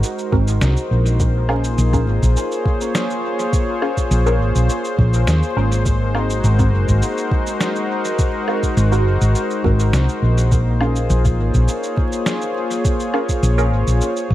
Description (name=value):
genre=ambient dub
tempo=103 BPM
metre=4/4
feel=straight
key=unclear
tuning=A4 = 442 Hz
part: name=warm analog pad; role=sustained chords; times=0.0-14.3 s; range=Ab3 to Db5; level=-21 LUFS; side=left 1 dB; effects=chorus
part: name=electronic cabasa, snare drum and woodblock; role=drums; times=0.0-14.3 s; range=none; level=-26 LUFS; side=equal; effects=overdrive, dub echo
part: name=filtered dub chord stab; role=stabs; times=0.3-13.7 s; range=C4 to Bb4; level=-27 LUFS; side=right 2 dB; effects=phaser, analog chorus, dub echo
part: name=hollow-body short-scale fingered electric bass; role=bass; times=0.3-14.3 s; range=Gb1 to Eb2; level=-16 LUFS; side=equal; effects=tube saturation
part: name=electronic kick drum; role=drums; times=0.3-14.3 s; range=none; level=-19 LUFS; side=equal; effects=none
room=light reverb, digital ambience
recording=vinyl crackle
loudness=-15 LUFS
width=side -14 dB against mid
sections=0.0-14.3 A section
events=none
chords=0.0 Ab9; 1.2 Bbm7; 5.9 Ab9; 10.5 Bbm7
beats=0.03 0.61 | 1.20 1.78 2.36 2.94 | 3.53 4.11 4.69 5.28 | 5.86 6.44 7.02 7.61 | 8.19 8.77 9.35 9.94 | 10.52 11.10 11.68 12.27 | 12.85 13.43 14.01